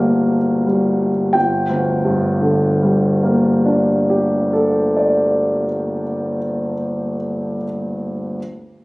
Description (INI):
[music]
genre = classical, impressionist solo piano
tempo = 50 BPM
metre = 4/4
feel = rubato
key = G minor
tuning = A4 = 440 Hz
[part]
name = warm grand piano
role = solo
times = 0.0-8.4 s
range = G1 to A5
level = -15 LUFS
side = equal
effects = none
[sound]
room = moderate recital hall reverb, RT60 1.6 s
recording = recorded on a phone in the room, club reverb, compression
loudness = -15 LUFS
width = side -22 dB against mid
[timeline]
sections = 0.0-1.3 A section; 1.3-6.2 B section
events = slowing down 0.0-1.3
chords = 0.0 Gmadd9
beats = | 1.34 2.55 3.78 4.99